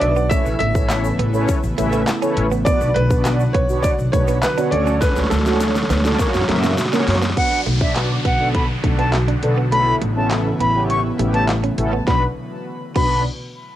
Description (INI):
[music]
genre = dance-pop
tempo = 102 BPM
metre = 4/4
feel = straight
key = B minor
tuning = A4 = 440 Hz
[part]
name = clear concert grand piano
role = melody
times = 0.0-6.1 s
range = A4 to E5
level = -22 LUFS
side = equal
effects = cassette tape
[part]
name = mellow synth brass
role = accompaniment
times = 0.0-13.2 s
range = A#3 to E5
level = -23 LUFS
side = equal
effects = chorus, sidechain pumping, cassette tape
[part]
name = airy breathy pad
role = sustained chords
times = 0.0-12.3 s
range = A#2 to C#5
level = -26 LUFS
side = equal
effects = chorus, sidechain pumping, cassette tape
[part]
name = direct-recorded clean electric guitar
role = riff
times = 0.0-13.1 s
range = A3 to D4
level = -26 LUFS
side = right 11 dB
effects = analog chorus, cassette tape
[part]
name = upright bass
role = bass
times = 0.0-13.2 s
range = A1 to F#2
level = -21 LUFS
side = equal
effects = sidechain pumping
[part]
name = pop drum kit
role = drums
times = 0.0-13.1 s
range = crash cymbal, handclaps, hi-hat, kick drum, snare drum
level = -21 LUFS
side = equal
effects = none
[part]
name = egg shaker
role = percussion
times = 0.2-7.4 s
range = none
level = -40 LUFS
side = left 12 dB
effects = none
[part]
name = reedy silver concert flute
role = melody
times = 7.4-13.2 s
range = E5 to C#6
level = -21 LUFS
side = left 1 dB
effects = cassette tape
[part]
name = downlifter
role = sound effects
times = 7.4-12.1 s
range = none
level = -30 LUFS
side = equal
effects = none
[sound]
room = light reverb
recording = home recording on cassette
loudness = -16 LUFS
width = side -12 dB against mid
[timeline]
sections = 0.0-7.4 A section; 7.4-12.1 B section; 12.1-13.8 C section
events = drum fill 5.0-7.4; kick muted 9.7-12.1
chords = 0.3 Aadd9; 2.7 Bm; 4.7 Dmaj7; 6.2 F#; 7.4 Bm; 9.7 Aadd9; 12.1 Bm